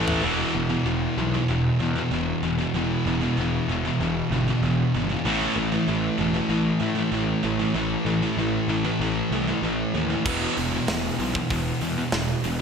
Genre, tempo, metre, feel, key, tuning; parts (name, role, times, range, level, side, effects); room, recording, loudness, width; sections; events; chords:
heavy metal; 96 BPM; 4/4; straight; A4 = 438 Hz
fuzz guitar; riff; 0.0-12.6 s; E2 to A3; -27 LUFS; equal; distortion
heavy high-gain guitar; riff; 0.0-12.6 s; E2 to A3; -28 LUFS; left 8 dB; distortion
high-gain distorted guitar; riff; 0.0-12.6 s; E2 to A3; -28 LUFS; right 7 dB; distortion
fuzz picked electric bass; bass; 0.0-12.6 s; E1 to A2; -29 LUFS; equal; overdrive
tight metal drum kit; drums; 0.1-0.2, 10.3-12.6 s; crash cymbal, hi-hat, kick drum, snare drum, toms; -30 LUFS; equal; gated reverb
moderate lush hall reverb, RT60 1.8 s, small room ambience; bright 1980s-style digital production; -22 LUFS; side -6 dB against mid
0.2-12.6 A section
drum fill 0.0
0.2 E5; 5.3 A5; 10.3 E5